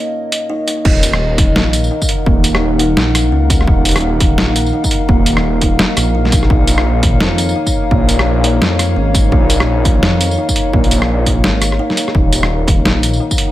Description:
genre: half-time drum and bass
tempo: 170 BPM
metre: 4/4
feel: swing 60% on 16ths, half-time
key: Eb minor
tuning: A4 = 440 Hz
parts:
  - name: dark analog pad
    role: sustained chords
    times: 0.0-13.5 s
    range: Bb3 to Gb5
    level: -20 LUFS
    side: left 3 dB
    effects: chorus, sidechain pumping
  - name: metallic inharmonic drone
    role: texture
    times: 0.0-13.5 s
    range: Bb3 to Eb4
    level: -25 LUFS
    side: equal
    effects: chorus, built-in reverb
  - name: boom bap sampler-style drum kit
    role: drums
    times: 0.3-13.5 s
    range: crash cymbal, hi-hat, rim click, snare drum, tambourine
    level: -17 LUFS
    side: equal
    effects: small room reverb
  - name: kalimba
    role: arpeggios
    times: 0.5-13.5 s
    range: Eb3 to Eb4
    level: -21 LUFS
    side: right 2 dB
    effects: dub echo
  - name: dark detuned saw bass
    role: bass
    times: 0.8-13.2 s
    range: Eb1 to F2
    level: -15 LUFS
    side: equal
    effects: none
  - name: electronic kick drum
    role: drums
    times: 0.9-13.4 s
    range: none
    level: -14 LUFS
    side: equal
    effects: small room reverb
room: light reverb, digital ambience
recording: none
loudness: -11 LUFS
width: side -14 dB against mid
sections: 0.9-13.5 A section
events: drop 0.9-13.5; break 11.8-12.1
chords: 0.0 Bbm; 0.9 Ebmadd9; 6.5 Bbm; 12.1 Ebmadd9

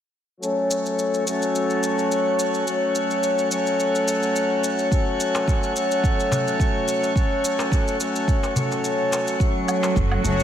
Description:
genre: organic downtempo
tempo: 107 BPM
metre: 4/4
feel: swing 54% on 16ths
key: F# minor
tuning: A4 = 440 Hz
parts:
  - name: pedal harmonium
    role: accompaniment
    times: 0.4-10.4 s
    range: F#3 to A4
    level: -22 LUFS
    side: left 1 dB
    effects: sidechain pumping, low-pass filter, tape echo
  - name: shaker and woodblock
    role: drums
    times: 0.4-10.4 s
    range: none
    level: -32 LUFS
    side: equal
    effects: none
  - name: drifting glass-harmonics texture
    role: texture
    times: 0.8-10.4 s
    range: F#4 to F#5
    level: -31 LUFS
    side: equal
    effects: chorus, built-in reverb
  - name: electronic kick drum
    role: drums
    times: 4.9-10.1 s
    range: none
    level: -22 LUFS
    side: right 1 dB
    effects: none
  - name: darbuka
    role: percussion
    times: 5.3-9.9 s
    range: none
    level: -30 LUFS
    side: equal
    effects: none
  - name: muted studio string section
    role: sustained chords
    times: 9.4-10.4 s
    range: F#3 to C#5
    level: -25 LUFS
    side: right 2 dB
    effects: sidechain pumping
  - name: upright bass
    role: bass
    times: 10.0-10.4 s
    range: F#1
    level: -22 LUFS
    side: right 1 dB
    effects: sidechain pumping
room: wet lush hall reverb, RT60 1.9 s, small room ambience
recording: dreamy mix soaked in reverb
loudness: -20 LUFS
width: side -10 dB against mid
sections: 0.4-9.4 A section; 9.4-10.4 B section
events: filter sweep on harmonium 0.4-9.4, 9.4-10.4; kick drops out 8.8-9.4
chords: 0.4 F#m

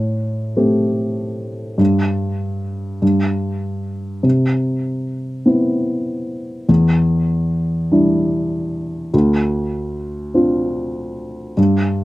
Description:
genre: folk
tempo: 49 BPM (dotted quarters)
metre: 6/8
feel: straight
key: unclear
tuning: A4 = 440 Hz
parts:
  - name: dark baby grand piano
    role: solo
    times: 0.0-12.0 s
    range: D2 to G4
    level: -16 LUFS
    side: equal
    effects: none
room: light reverb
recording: recorded outdoors, with no room sound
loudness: -16 LUFS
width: side -18 dB against mid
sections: 0.0-12.0 A section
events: none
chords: 0.0 Am7; 1.8 N.C.; 4.2 Cmaj7; 6.7 Em7; 9.1 Dm7

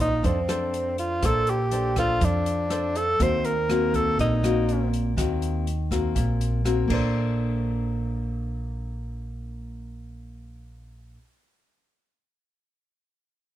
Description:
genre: bossa nova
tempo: 122 BPM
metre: 4/4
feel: straight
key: Bb major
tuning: A4 = 439 Hz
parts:
  - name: breathy tenor saxophone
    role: melody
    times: 0.0-4.9 s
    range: C4 to C5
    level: -25 LUFS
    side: right 1 dB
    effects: none
  - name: nylon-string guitar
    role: accompaniment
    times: 0.0-11.2 s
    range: Bb2 to C5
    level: -28 LUFS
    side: left 2 dB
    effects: none
  - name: upright bass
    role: bass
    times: 0.0-11.1 s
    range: Bb1 to F2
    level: -28 LUFS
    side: right 1 dB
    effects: none
  - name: open jazz drum kit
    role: drums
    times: 0.0-7.0 s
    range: crash cymbal, hi-hat, kick drum, rim click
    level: -32 LUFS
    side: equal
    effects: none
room: light reverb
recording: dark, warm production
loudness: -22 LUFS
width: side -12 dB against mid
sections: 0.0-7.1 A section; 7.1-11.1 B section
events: tenor saxophone solo 0.0-7.1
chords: 0.0 Bbmaj9; 3.2 Ebm6; 6.9 Bbmaj9

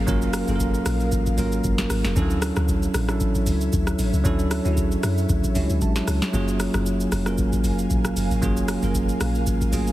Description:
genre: amapiano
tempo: 115 BPM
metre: 4/4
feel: swing 55% on 16ths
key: unclear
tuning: A4 = 441 Hz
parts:
  - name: bell-like tine electric piano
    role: accompaniment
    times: 0.0-9.9 s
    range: E#3 to A5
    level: -24 LUFS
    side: right 1 dB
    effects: none
  - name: ethereal airy pad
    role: sustained chords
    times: 0.0-9.9 s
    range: F#3 to G#5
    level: -34 LUFS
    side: equal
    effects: ensemble chorus, built-in reverb, sidechain pumping
  - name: deep log drum bass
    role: bass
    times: 0.0-9.9 s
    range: E#1 to F#2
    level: -25 LUFS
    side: equal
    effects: none
  - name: downlifter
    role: sound effects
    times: 0.0-2.2 s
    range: none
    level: -46 LUFS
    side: left 2 dB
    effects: none
  - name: booming analog drum machine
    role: drums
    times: 0.1-9.9 s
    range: hi-hat, kick drum, rim click, shaker, snare drum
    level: -25 LUFS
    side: equal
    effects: none
room: light reverb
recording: heavily compressed radio sound, multiband compression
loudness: -20 LUFS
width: side -15 dB against mid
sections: 0.0-9.9 A section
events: tine electric piano fill 5.3-6.3; kick muted 6.3-7.4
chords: 0.0 F#maj9; 2.2 Dmaj9; 6.3 F#maj9

